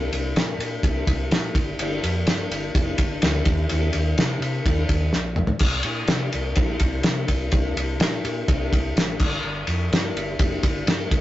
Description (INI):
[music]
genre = garage rock duo or trio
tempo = 126 BPM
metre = 4/4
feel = straight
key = unclear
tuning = A4 = 440 Hz
[part]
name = overdriven fingered electric bass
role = bass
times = 0.0-11.2 s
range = F1 to C3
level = -27 LUFS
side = equal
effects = none
[part]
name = cloth-damped thuddy drum kit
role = drums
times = 0.1-11.2 s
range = crash cymbal, kick drum, ride cymbal, snare drum, toms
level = -21 LUFS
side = equal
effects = none
[sound]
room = moderate studio reverb, RT60 0.6 s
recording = rough rehearsal-room recording, tube saturation, nothing above 7.7 kHz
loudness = -20 LUFS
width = side -14 dB against mid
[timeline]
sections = 0.0-11.2 A section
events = drum fill 5.1-5.6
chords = none